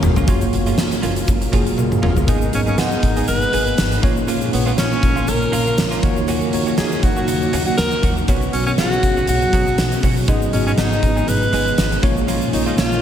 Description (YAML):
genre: 1980s-style pop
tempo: 120 BPM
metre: 4/4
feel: swing 55% on 16ths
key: G# dorian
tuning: A4 = 440 Hz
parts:
  - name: clear alto saxophone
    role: melody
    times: 0.0-13.0 s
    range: B3 to B4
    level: -22 LUFS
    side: equal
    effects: none
  - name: mellow tine electric piano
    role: accompaniment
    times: 0.0-13.0 s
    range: G#2 to F#5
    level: -22 LUFS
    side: equal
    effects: medium stereo tremolo, slapback echo
  - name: granular cloud pad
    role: sustained chords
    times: 0.0-13.0 s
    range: B2 to E#5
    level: -26 LUFS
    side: equal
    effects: built-in reverb
  - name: direct-recorded clean electric guitar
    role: riff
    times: 0.0-13.0 s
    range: E#3 to G#4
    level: -28 LUFS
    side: right 4 dB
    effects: lush chorus, tape echo
  - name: upright bass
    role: bass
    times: 0.0-13.0 s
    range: F#1 to D#2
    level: -24 LUFS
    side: equal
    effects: none
  - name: huge arena drum kit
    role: drums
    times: 0.0-12.9 s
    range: hi-hat, kick drum, snare drum, toms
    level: -19 LUFS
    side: equal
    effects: none
  - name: egg shaker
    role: percussion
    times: 0.0-13.0 s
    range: none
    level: -39 LUFS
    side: left 8 dB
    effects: none
room: moderate lush hall reverb, RT60 1.7 s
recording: big arena sound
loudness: -15 LUFS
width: side -9 dB against mid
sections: 0.3-2.3 A section; 2.3-13.0 B section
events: drum fill 0.0, 1.8-2.3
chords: 0.3 F#maj7; 2.3 G#m; 4.0 A#m; 6.0 D#m7; 8.3 Bsus2; 10.3 G#m; 12.0 A#m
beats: | 0.28 0.78 1.28 1.78 | 2.28 2.78 3.28 3.78 | 4.28 4.78 5.28 5.78 | 6.28 6.78 7.28 7.78 | 8.28 8.78 9.28 9.78 | 10.28 10.78 11.28 11.78 | 12.28 12.78